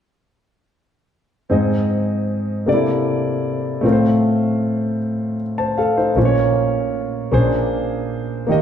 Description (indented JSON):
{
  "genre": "slow gospel",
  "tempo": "52 BPM (dotted quarters)",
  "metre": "6/8",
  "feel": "straight",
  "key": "unclear",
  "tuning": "A4 = 440 Hz",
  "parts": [
    { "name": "warm concert grand piano", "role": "accompaniment", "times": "1.5-8.6 s", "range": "Ab2 to A5", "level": "-17 LUFS", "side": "equal", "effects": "none" },
    { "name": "warm double bass", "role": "bass", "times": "6.2-8.4 s", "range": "Bb1", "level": "-22 LUFS", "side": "right 1 dB", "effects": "none" }
  ],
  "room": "wet large studio reverb, RT60 1.3 s",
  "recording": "band playing live in one room, lossy compression artefacts",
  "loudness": "-16 LUFS",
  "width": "side -8 dB against mid",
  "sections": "1.5-8.6 A section",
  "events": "none",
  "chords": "1.5 Ab; 2.7 C13; 3.8 F/A; 6.2 Bbm; 7.3 Bb9",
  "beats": "| 1.51 2.67 | 3.84 5.00 | 6.16 7.33 | 8.49"
}